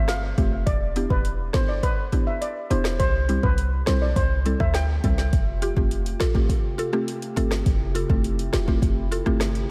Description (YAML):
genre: dancehall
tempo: 103 BPM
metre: 4/4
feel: straight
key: unclear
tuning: A4 = 445 Hz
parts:
  - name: steel pan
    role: melody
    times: 0.0-5.2 s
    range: B4 to G5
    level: -31 LUFS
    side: equal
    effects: diffuse ambient delay
  - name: clean 808-style bass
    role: bass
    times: 0.0-9.6 s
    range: E1 to D2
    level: -27 LUFS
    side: equal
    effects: none
  - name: afro-pop drum kit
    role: drums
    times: 0.1-9.7 s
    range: hi-hat, kick drum, rim click, snare drum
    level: -27 LUFS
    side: equal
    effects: none
  - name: mallet-like synth pluck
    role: accompaniment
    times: 0.4-9.4 s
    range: G3 to A4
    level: -31 LUFS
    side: equal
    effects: chorus, sidechain pumping
  - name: hollow soft pad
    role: sustained chords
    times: 5.3-9.7 s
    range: C3 to G4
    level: -36 LUFS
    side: equal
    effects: chorus, sidechain pumping
room: light reverb, digital ambience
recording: none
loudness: -23 LUFS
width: mono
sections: 0.0-5.3 A section; 5.3-9.7 B section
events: none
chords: 0.0 Fadd9; 0.7 Em7; 3.0 C; 5.3 Fadd9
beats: 0.09 | 0.67 1.25 1.83 2.42 | 3.00 3.58 4.16 4.75 | 5.33 5.91 6.49 7.08 | 7.66 8.24 8.82 9.41